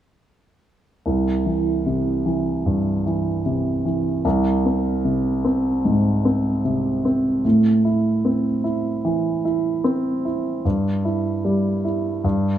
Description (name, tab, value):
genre	pop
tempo	75 BPM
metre	4/4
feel	straight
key	C major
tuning	A4 = 442 Hz
part	warm grand piano	accompaniment	1.1-12.6 s	C2 to E4	-18 LUFS	right 1 dB	none
room	moderate plate reverb, RT60 2.9 s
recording	small room ambience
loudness	-18 LUFS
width	side -11 dB against mid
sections	1.0-12.6 A section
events	none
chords	1.0 C; 4.2 Ab/C; 7.4 Am; 10.6 Em/G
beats	| 1.05 1.85 2.65 3.45 | 4.25 5.05 5.85 6.65 | 7.45 8.25 9.05 9.85 | 10.65 11.45 12.25